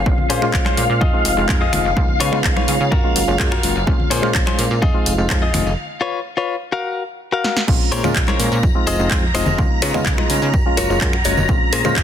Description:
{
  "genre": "filtered disco house",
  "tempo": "126 BPM",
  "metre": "4/4",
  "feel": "straight",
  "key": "Bb minor",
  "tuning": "A4 = 444 Hz",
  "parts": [
    { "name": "phased string machine", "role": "sustained chords", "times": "0.0-12.0 s", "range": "F5 to Bb5", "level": "-24 LUFS", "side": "left 1 dB", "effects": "ensemble chorus, phaser, vintage 12-bit sampler grit, sidechain pumping, low-pass filter" },
    { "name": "direct-recorded clean electric guitar", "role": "riff", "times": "0.0-12.0 s", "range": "Db4 to Gb5", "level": "-23 LUFS", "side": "left 5 dB", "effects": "sidechain pumping, low-pass filter" },
    { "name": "plucky analog bass", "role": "bass", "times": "0.0-12.0 s", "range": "F1 to Db3", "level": "-22 LUFS", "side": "equal", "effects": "tube saturation, sidechain pumping, low-pass filter" },
    { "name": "barky reed electric piano", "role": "accompaniment", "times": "0.1-12.0 s", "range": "Ab3 to C5", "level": "-23 LUFS", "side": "equal", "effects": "phaser, sidechain pumping, low-pass filter" },
    { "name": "electronic kick drum", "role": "drums", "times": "0.1-12.0 s", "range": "none", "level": "-19 LUFS", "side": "equal", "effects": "none" },
    { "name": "tambourine and congas", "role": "percussion", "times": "0.1-12.0 s", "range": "none", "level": "-28 LUFS", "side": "left 1 dB", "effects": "sidechain pumping on perc, low-pass filter on perc" },
    { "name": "house drum kit", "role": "drums", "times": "0.3-12.0 s", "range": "crash cymbal, finger snaps, handclaps, hi-hat, snare drum", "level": "-23 LUFS", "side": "equal", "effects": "none" }
  ],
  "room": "light reverb",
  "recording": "dense, heavily limited modern master",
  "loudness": "-15 LUFS",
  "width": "side -9 dB against mid",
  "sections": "0.0-7.7 A section; 7.7-12.0 B section",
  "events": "break 5.8-7.7; drum fill 7.4; drop 7.7-12.0; clean electric guitar fill 10.8-11.5",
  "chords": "0.1 Bbm9; 1.0 Fm7; 2.0 Db7; 2.9 Gbmaj7; 3.9 Bbm9; 4.8 Fm7; 5.8 Db7; 6.7 Gbmaj7; 7.7 Bbm9; 8.6 Fm7; 9.6 Db7; 10.5 Gbmaj7; 11.5 Bbm9"
}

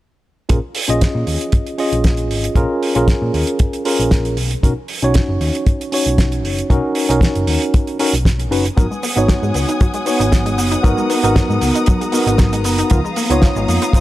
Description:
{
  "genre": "nu-disco, nu disco",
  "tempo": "116 BPM",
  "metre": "4/4",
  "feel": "swing 53% on 16ths",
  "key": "unclear",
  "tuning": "A4 = 440 Hz",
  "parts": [
    { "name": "tine electric piano", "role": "accompaniment", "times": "0.5-14.0 s", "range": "B3 to D#5", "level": "-19 LUFS", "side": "equal", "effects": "medium stereo tremolo, sidechain pumping, low-pass filter, tape echo" },
    { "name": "hollow-body short-scale picked electric bass", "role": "bass", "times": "0.5-13.8 s", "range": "F#1 to A#2", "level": "-20 LUFS", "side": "equal", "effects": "tube saturation" },
    { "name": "damped 70s drum kit", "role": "drums", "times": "0.5-14.0 s", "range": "hi-hat, shaker, snare drum", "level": "-22 LUFS", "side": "right 2 dB", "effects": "studio reverb" },
    { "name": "kick drum", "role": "drums", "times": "0.5-14.0 s", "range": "none", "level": "-14 LUFS", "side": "equal", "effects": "studio reverb" },
    { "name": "dark studio string section", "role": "sustained chords", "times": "8.8-14.0 s", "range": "B3 to D#6", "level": "-23 LUFS", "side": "left 2 dB", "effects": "sidechain pumping" },
    { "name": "analog pluck", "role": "arpeggios", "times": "8.8-14.0 s", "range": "E#3 to D#4", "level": "-23 LUFS", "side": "left 2 dB", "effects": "chorus, sidechain pumping, tape echo" }
  ],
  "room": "small room reverb",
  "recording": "dry, gritty hardware recording",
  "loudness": "-14 LUFS",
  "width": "side -15 dB against mid",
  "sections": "0.5-14.0 A section",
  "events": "none",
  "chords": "0.5 A#m7; 4.4 Bmaj7; 8.8 G#m7; 12.9 C#13"
}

